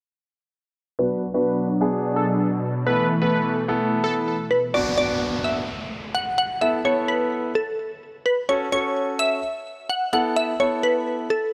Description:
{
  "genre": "pop",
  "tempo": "128 BPM",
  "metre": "4/4",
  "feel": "straight",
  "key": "B dorian",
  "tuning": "A4 = 440 Hz",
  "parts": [
    { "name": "plucky unison lead", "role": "melody", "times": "1.0-4.1 s", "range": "A4 to B4", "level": "-28 LUFS", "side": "equal", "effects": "low-pass filter, delay" },
    { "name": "clear concert grand piano", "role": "accompaniment", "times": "1.0-11.3 s", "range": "B3 to A4", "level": "-28 LUFS", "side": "equal", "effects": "low-pass filter" },
    { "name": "soft supersaw", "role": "sustained chords", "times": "1.0-4.7 s", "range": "B2 to D4", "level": "-27 LUFS", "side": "equal", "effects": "low-pass filter" },
    { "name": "glassy wavetable pluck", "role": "melody", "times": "4.5-11.5 s", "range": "A4 to F#5", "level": "-25 LUFS", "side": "equal", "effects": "chorus, delay" },
    { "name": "downlifter", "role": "sound effects", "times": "4.7-8.5 s", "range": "none", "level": "-34 LUFS", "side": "equal", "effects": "none" }
  ],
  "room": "light reverb, digital ambience",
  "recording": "none",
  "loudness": "-23 LUFS",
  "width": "mono",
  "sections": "1.0-4.7 A section; 4.7-11.5 B section",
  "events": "filter sweep 1.0-4.7",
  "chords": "1.0 Bm; 2.9 Esus4/B; 4.7 Bm; 6.6 Esus4/B; 8.5 A6; 10.1 Esus4",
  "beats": "| 0.99 1.46 1.93 2.40 | 2.87 3.33 3.80 4.27 | 4.74 5.21 5.68 6.15 | 6.62 7.08 7.55 8.02 | 8.49 8.96 9.43 9.90 | 10.37 10.83 11.30"
}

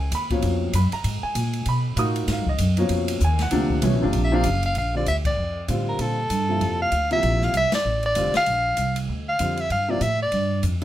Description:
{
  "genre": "modal jazz",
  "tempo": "194 BPM",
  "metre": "4/4",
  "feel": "swing 61% on 8ths",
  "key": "G dorian from 4.8 s",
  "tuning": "A4 = 440 Hz",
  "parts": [
    { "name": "clear grand piano", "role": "accompaniment", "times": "0.0-10.8 s", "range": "Cb3 to Eb6", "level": "-26 LUFS", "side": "equal", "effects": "none" },
    { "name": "upright bass", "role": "bass", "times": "0.0-10.8 s", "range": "F1 to Cb3", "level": "-24 LUFS", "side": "equal", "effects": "none" },
    { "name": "open jazz drum kit", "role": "drums", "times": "0.1-10.8 s", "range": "hi-hat, kick drum, ride cymbal, snare drum", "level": "-31 LUFS", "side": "left 1 dB", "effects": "none" },
    { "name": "breathy soprano saxophone", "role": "melody", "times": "4.2-10.6 s", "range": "A4 to E#5", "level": "-23 LUFS", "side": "equal", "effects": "none" }
  ],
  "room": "light reverb",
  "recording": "close, detailed microphones",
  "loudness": "-20 LUFS",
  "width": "side -13 dB against mid",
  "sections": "0.0-4.8 A section; 4.8-10.8 B section",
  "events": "band accent 5.2, 7.7",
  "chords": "0.0 Db9sus4; 3.5 D7alt; 4.8 Gm11",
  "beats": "0.12 0.43 0.74 | 1.05 1.36 1.67 1.98 | 2.29 2.59 2.90 3.21 | 3.52 3.83 4.14 4.45 | 4.76 5.07 5.38 5.68 | 6.00 6.30 6.61 6.92 | 7.23 7.54 7.85 8.16 | 8.47 8.78 9.09 9.40 | 9.71 10.02 10.33 10.64"
}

